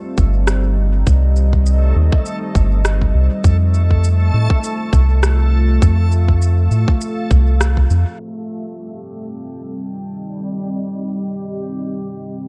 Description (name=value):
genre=ambient dub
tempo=101 BPM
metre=4/4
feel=swing 56% on 16ths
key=C dorian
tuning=A4 = 440 Hz
part: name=deep dark ambient pad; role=sustained chords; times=0.0-12.5 s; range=G3 to F5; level=-28 LUFS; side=equal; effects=chorus, built-in reverb
part: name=backwards swelling texture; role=texture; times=0.0-12.5 s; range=G3 to A4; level=-32 LUFS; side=equal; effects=built-in reverb
part: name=round analog bass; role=bass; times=0.2-8.0 s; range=G1 to A2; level=-15 LUFS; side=equal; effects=none
part: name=electronic kick drum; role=drums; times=0.2-7.9 s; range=none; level=-17 LUFS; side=equal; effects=none
part: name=electronic shaker and rim click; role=drums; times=0.2-8.0 s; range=none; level=-27 LUFS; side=equal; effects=low-pass filter on perc, low-pass filter on snare, low-pass filter on room, dub echo
room=little or no reverb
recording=dark, warm production, low-pass filter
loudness=-16 LUFS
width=mono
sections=0.0-8.2 A section; 8.2-12.5 B section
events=band accent 7.6; filter sweep 8.2-12.5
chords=0.0 Cm; 3.4 F; 8.2 Cm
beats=0.47 | 1.07 1.66 2.26 2.85 | 3.44 4.04 4.63 5.23 | 5.82 6.42 7.01 7.60 | 8.20 8.79 9.39 9.98 | 10.57 11.17 11.76 12.36